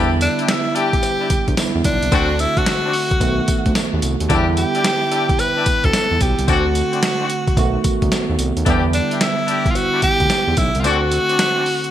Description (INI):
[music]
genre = R&B, new jack swing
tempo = 110 BPM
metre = 4/4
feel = swing 65% on 16ths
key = E minor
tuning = A4 = 440 Hz
[part]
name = bright tine electric piano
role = accompaniment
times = 0.0-11.9 s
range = D3 to F#4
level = -23 LUFS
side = right 4 dB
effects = lush chorus
[part]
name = mellow horn section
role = stabs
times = 0.0-11.7 s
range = C4 to G4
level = -24 LUFS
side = left 4 dB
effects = none
[part]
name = smooth synth bass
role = bass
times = 0.0-11.2 s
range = B1 to E2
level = -21 LUFS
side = equal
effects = none
[part]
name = clear tenor saxophone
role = melody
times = 0.2-11.9 s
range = D4 to B4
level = -20 LUFS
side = equal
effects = none
[part]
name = boom bap sampler-style drum kit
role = drums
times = 0.2-11.9 s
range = hi-hat, kick drum, snare drum, tambourine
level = -20 LUFS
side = equal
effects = gated reverb
[part]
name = cowbell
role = percussion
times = 0.5-11.6 s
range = none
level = -35 LUFS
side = left 9 dB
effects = none
[sound]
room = light reverb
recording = bright 1980s-style digital production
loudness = -15 LUFS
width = side -11 dB against mid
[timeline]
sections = 0.0-11.9 A section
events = kick muted 10.8-11.9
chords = 0.0 Em7; 2.1 D7; 3.2 B7; 4.3 Em7; 6.5 D7; 7.6 B7; 8.7 Em7; 10.8 D7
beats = 0.48 1.03 1.57 | 2.12 2.66 3.21 3.75 | 4.30 4.84 5.39 5.94 | 6.48 7.03 7.57 8.12 | 8.66 9.21 9.75 10.30 | 10.85 11.39